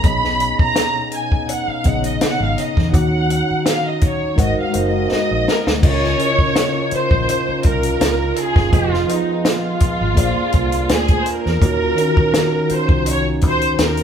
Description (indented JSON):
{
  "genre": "lush 1970s-style soul",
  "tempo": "83 BPM",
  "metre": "4/4",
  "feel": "swing 54% on 16ths",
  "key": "Db major",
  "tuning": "A4 = 440 Hz",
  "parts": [
    { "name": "warm studio violin section", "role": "melody", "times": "0.0-14.0 s", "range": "Eb4 to Cb6", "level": "-20 LUFS", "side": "equal", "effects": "none" },
    { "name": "mellow tine electric piano", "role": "accompaniment", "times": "0.0-14.0 s", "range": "Cb3 to Gb5", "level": "-22 LUFS", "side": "equal", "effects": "medium stereo tremolo" },
    { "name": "dark French horn section", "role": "sustained chords", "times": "0.0-14.0 s", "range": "C3 to Gb4", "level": "-26 LUFS", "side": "right 3 dB", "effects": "none" },
    { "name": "vintage muted fingered electric bass", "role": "bass", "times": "0.0-14.0 s", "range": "F1 to Fb2", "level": "-23 LUFS", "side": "equal", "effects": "none" },
    { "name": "compact cocktail drum kit", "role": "drums", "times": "0.0-14.0 s", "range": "crash cymbal, hi-hat, kick drum, snare drum", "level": "-18 LUFS", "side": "equal", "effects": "none" }
  ],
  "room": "moderate large studio reverb, RT60 1.2 s",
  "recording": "band playing live in one room",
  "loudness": "-15 LUFS",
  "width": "side -8 dB against mid",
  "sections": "0.0-5.8 A section; 5.8-14.0 B section",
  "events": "violin section solo 0.0-5.8; drum fill 5.1-5.8",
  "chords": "0.0 Cb69; 2.9 Ebm7; 4.4 Ab9; 5.8 Db69; 8.7 Fm7b5; 10.2 Bb7; 11.6 Ebm7"
}